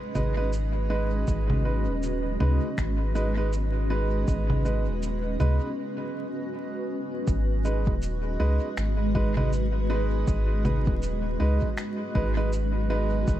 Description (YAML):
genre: ambient dub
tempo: 80 BPM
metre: 4/4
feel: swing 59% on 16ths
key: G# minor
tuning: A4 = 440 Hz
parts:
  - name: granular cloud pad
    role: sustained chords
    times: 0.0-13.4 s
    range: G#3 to D#5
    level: -31 LUFS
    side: equal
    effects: built-in reverb
  - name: clear upright piano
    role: stabs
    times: 0.1-13.4 s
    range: G#3 to B4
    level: -32 LUFS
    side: right 2 dB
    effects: dub echo
  - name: soft dub sub bass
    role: bass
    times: 0.1-13.4 s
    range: D#1 to C#2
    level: -26 LUFS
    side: equal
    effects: none
  - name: electronic congas, cabasa and finger snaps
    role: drums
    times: 0.2-13.4 s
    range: none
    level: -33 LUFS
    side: right 1 dB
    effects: dub echo
  - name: electronic kick drum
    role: drums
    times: 1.3-13.4 s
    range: none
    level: -28 LUFS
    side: equal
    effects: overdrive
room: little or no reverb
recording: dark, warm production, vinyl crackle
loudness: -24 LUFS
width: side -13 dB against mid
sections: 0.0-7.3 A section; 7.3-13.4 B section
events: break 5.8-7.3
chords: 0.0 G#m